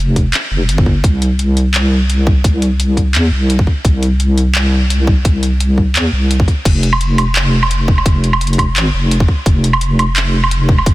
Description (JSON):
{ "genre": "half-time drum and bass", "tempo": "171 BPM", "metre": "4/4", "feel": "swing 54% on 16ths, half-time", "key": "unclear", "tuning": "A4 = 440 Hz", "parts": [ { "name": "deep soft wobble bass", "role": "bass", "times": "0.0-10.9 s", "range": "F1 to E2", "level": "-13 LUFS", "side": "equal", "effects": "chorus, tube saturation" }, { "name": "drum and bass drum kit", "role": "drums", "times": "0.2-10.9 s", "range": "crash cymbal, handclaps, hi-hat, woodblock", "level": "-18 LUFS", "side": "right 1 dB", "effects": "none" }, { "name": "electronic kick drum", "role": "drums", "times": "0.2-10.9 s", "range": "none", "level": "-12 LUFS", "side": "equal", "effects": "none" } ], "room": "light reverb", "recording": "none", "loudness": "-11 LUFS", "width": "side -17 dB against mid", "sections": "0.0-10.9 A section", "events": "none", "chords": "none" }